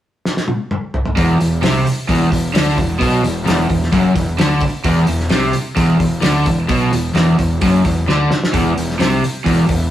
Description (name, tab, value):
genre	classic rock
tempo	130 BPM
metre	4/4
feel	straight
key	unclear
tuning	A4 = 440 Hz
part	cloth-damped thuddy drum kit	drums	0.3-9.8 s	hi-hat, kick drum, snare drum, toms	-19 LUFS	equal	none
part	overdriven electric guitar	riff	1.2-9.9 s	E2 to D3	-19 LUFS	right 3 dB	none
part	overdriven semi-hollow guitar	riff	1.2-9.9 s	E2 to D3	-16 LUFS	left 1 dB	none
part	fuzz fingered electric bass	bass	1.2-9.9 s	E1 to D2	-23 LUFS	equal	overdrive
room	moderate stone room reverb, RT60 1.3 s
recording	rough rehearsal-room recording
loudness	-13 LUFS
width	side -12 dB against mid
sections	0.0-1.2 A section; 1.2-9.9 B section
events	drum fill 0.2-1.2, 8.1-8.5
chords	0.0 N.C.; 1.2 E5